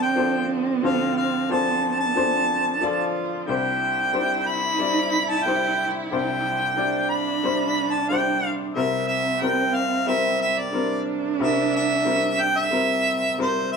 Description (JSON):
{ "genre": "acoustic folk-pop ballad", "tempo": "91 BPM", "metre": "4/4", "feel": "straight", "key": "unclear", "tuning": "A4 = 439 Hz", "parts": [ { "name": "warm harmonica", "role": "melody", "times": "0.0-13.8 s", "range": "C5 to B5", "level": "-23 LUFS", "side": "equal", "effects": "none" }, { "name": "dark cello", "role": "second line", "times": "0.0-13.7 s", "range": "C4 to F4", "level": "-27 LUFS", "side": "right 7 dB", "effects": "none" }, { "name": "bright upright piano", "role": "accompaniment", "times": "0.0-13.8 s", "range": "C2 to D5", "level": "-26 LUFS", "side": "left 6 dB", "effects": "none" } ], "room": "wet stone room reverb, RT60 0.9 s", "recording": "band playing live in one room", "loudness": "-20 LUFS", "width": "side -5 dB against mid", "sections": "0.0-13.8 A section", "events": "none", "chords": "0.0 Dm7; 3.5 Cadd9; 8.8 C7" }